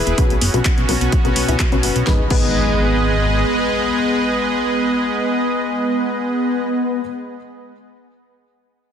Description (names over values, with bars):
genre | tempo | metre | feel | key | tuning
progressive house | 127 BPM | 4/4 | straight | G# minor | A4 = 439 Hz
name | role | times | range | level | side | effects
supersaw pad | sustained chords | 0.0-6.6 s | E3 to D#5 | -21 LUFS | right 2 dB | sidechain pumping
felt-muted upright piano | stabs | 0.0-7.0 s | B2 to B4 | -25 LUFS | left 4 dB | sidechain pumping, low-pass filter, ping-pong delay
fat analog bass | bass | 0.0-3.4 s | E1 to C#2 | -20 LUFS | equal | sidechain pumping
tight sequenced synth | arpeggios | 0.1-7.0 s | B3 to A#4 | -21 LUFS | left 1 dB | chorus, sidechain pumping, ping-pong delay
deep house drum kit | drums | 0.1-2.5 s | crash cymbal, handclaps, hi-hat, snare drum | -24 LUFS | equal | none
electronic kick drum | drums | 0.2-2.5 s | none | -17 LUFS | equal | overdrive
impact | sound effects | 2.1-6.8 s | none | -30 LUFS | right 1 dB | none
room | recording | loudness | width
moderate lush hall reverb, RT60 1.9 s | dense, heavily limited modern master | -15 LUFS | side -8 dB against mid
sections
0.0-2.1 A section; 2.1-5.8 B section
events
filter sweep on analog synth bass 0.0-2.1; filter sweep on synth arpeggio sound 0.0-2.1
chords
0.2 Bsus2; 2.1 G#m